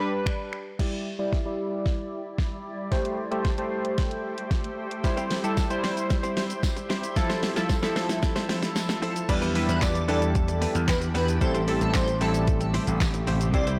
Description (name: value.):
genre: dance-pop.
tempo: 113 BPM.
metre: 4/4.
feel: straight.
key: A minor.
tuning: A4 = 440 Hz.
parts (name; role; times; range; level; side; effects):
chorused retro synth keys; accompaniment; 0.0-13.7 s; F3 to D5; -31 LUFS; equal; sidechain pumping, low-pass filter.
smooth R&B drum kit; drums; 0.3-13.8 s; crash cymbal, finger snaps, handclaps, hi-hat, kick drum, shaker, snare drum; -30 LUFS; equal; soft clipping on snare.
shimmering ambient pad; sustained chords; 1.8-13.8 s; C3 to D5; -37 LUFS; equal; chorus, built-in reverb, sidechain pumping, low-pass filter.
direct-recorded clean electric guitar; riff; 5.0-13.8 s; B3 to C5; -36 LUFS; equal; subtle chorus, low-pass filter.
tambourine; percussion; 5.6-13.1 s; none; -44 LUFS; equal; none.
airy dreamy lead; melody; 9.3-13.6 s; A4 to D5; -34 LUFS; equal; chorus, sidechain pumping, delay.
vintage slap bass; bass; 9.3-13.8 s; A1 to E2; -28 LUFS; equal; sidechain pumping.
room: light reverb.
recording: blown-out, overdriven recording, overdrive.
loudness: -26 LUFS.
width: mono.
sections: 0.8-9.3 A section; 9.3-13.8 B section.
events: build-up 0.8-9.3; drum fill 0.8-9.3; filter sweep 0.8-9.3; drop 9.3-13.8.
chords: 0.0 G; 0.8 Em7; 2.9 Am7; 5.0 C; 7.2 Fmaj7; 9.3 Em7; 11.4 Am7.